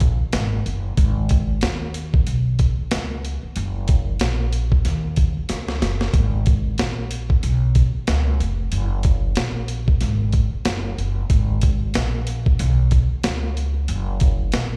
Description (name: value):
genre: hip hop, jazz-hop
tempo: 93 BPM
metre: 4/4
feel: swing 59% on 16ths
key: G# minor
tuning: A4 = 443 Hz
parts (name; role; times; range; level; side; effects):
- upright bass; bass; 0.0-14.8 s; E#1 to D#2; -24 LUFS; equal; none
- boom bap sampler-style drum kit; drums; 0.0-14.7 s; hi-hat, kick drum, snare drum; -23 LUFS; equal; none
room: little or no reverb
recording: played on a big sound system in a bare room, large studio reverb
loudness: -21 LUFS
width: mono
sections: 0.0-6.1 A section; 6.1-14.8 A section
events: drum fill 5.5-6.1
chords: none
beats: 0.33 | 0.98 1.62 2.27 2.91 | 3.56 4.20 4.85 5.50 | 6.14 6.79 7.43 8.07 | 8.72 9.37 10.01 10.66 | 11.30 11.95 12.59 13.24 | 13.88 14.53